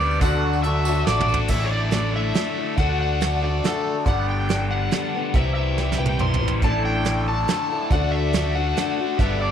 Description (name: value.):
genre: folk rock and heartland rock.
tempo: 140 BPM.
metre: 3/4.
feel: straight.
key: D major.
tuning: A4 = 440 Hz.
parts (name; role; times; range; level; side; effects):
overdriven slide guitar; melody; 0.0-9.5 s; A4 to C6; -26 LUFS; left 2 dB; none.
bright grand piano; accompaniment; 0.0-1.5, 6.6-9.5 s; E4 to D5; -35 LUFS; right 8 dB; none.
picked old ladder-braced acoustic guitar; accompaniment; 0.0-9.5 s; A2 to B4; -29 LUFS; left 9 dB; none.
overdriven electric guitar; riff; 0.0-9.5 s; G2 to G4; -27 LUFS; equal; phaser.
picked electric bass; bass; 0.0-9.5 s; G1 to D2; -24 LUFS; equal; none.
tambourine; percussion; 0.0-1.3 s; none; -39 LUFS; right 13 dB; none.
soft brush drum kit; drums; 0.2-9.3 s; crash cymbal, hi-hat, kick drum, snare drum, toms; -24 LUFS; right 3 dB; none.
room: light reverb, small room reverb.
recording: 1960s-style stereo with parts hard left and right.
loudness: -19 LUFS.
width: side -9 dB against mid.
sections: 0.0-1.5 A section; 1.5-9.5 B section.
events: drum fill 1.1-1.5, 5.8-6.6.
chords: 0.2 D; 1.5 Asus4; 2.8 D; 4.1 Gadd9; 5.3 Cmaj7; 6.6 Asus4; 7.9 D.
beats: | 0.22 0.64 1.07 | 1.50 1.92 2.35 | 2.78 3.21 3.63 | 4.06 4.49 4.92 | 5.34 5.77 6.20 | 6.63 7.06 7.48 | 7.91 8.34 8.76 | 9.19.